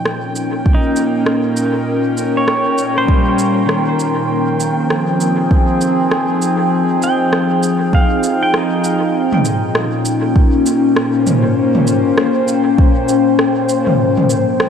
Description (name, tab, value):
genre	ambient dub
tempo	99 BPM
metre	4/4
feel	swing 59% on 16ths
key	Bb dorian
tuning	A4 = 440 Hz
part	warbly tape-like pad	sustained chords	0.0-14.7 s	Bb2 to G5	-14 LUFS	left 2 dB	chorus, built-in reverb, phaser
part	organic electronic drum kit	drums	0.1-14.7 s	rim click, shaker, toms	-20 LUFS	right 1 dB	dub echo
part	pedal steel guitar	arpeggios	0.7-11.0 s	Eb3 to G5	-20 LUFS	right 2 dB	analog delay
part	electronic kick drum	drums	0.7-12.9 s	none	-12 LUFS	equal	none
room	wet huge ambient reverb, RT60 6.4 s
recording	dreamy mix soaked in reverb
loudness	-12 LUFS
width	side -7 dB against mid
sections	0.0-9.1 A section; 9.1-14.7 B section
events	none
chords	0.0 Bbm69; 4.3 Fm9; 9.1 Bbm69; 14.0 F7sus2